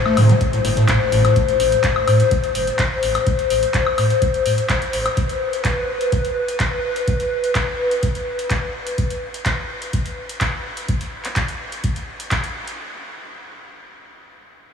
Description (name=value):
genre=acid house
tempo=126 BPM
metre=4/4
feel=straight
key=A minor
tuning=A4 = 440 Hz
part: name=warbly tape-like pad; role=sustained chords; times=0.0-9.0 s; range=B4 to C5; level=-21 LUFS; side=left 5 dB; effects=chorus, built-in reverb, sidechain pumping
part: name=overdriven acid bass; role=riff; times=0.1-1.3 s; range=A2 to A3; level=-21 LUFS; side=right 1 dB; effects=distortion, tube saturation, sidechain pumping, diffuse ambient delay
part: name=electro analog drum machine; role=drums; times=0.1-12.8 s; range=handclaps, hi-hat, woodblock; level=-25 LUFS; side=left 1 dB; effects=none
part: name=round analog bass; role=bass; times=0.2-5.1 s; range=G1 to A2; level=-18 LUFS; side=right 1 dB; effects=sidechain pumping
part: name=electronic kick drum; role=drums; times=0.4-12.4 s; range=none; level=-22 LUFS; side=equal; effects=none
room=wet huge ambient reverb, RT60 7.2 s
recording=dreamy mix soaked in reverb, studio ambience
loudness=-17 LUFS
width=side -6 dB against mid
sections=0.0-12.8 A section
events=none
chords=0.0 Am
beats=0.41 0.89 | 1.36 1.84 2.31 2.79 | 3.27 3.74 4.22 4.69 | 5.17 5.65 6.12 6.60 | 7.08 7.55 8.03 8.50 | 8.98 9.46 9.93 10.41 | 10.88 11.36 11.84 12.31